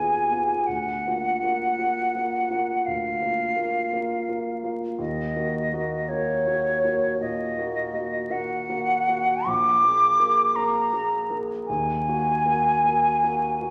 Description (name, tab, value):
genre	classical, romantic duo for flute and grand piano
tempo	50-56 BPM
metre	4/4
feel	rubato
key	unclear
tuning	A4 = 440 Hz
part	mellow hollow silver concert flute	melody	0.0-13.7 s	Db5 to D6	-25 LUFS	equal	none
part	warm concert grand piano	accompaniment	0.0-13.7 s	Bb1 to Bb4	-31 LUFS	equal	none
room	wet recital hall reverb, RT60 1.8 s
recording	vinyl crackle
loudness	-24 LUFS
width	mono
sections	0.0-13.7 A section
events	none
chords	0.0 Fm7b5/Eb; 0.7 Bb/D; 5.0 Ebm; 9.5 Bb7; 11.7 Ebm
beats	| 0.66 1.77 2.85 3.91 | 4.99 6.09 7.21 8.32 | 9.48 10.56 11.68 12.83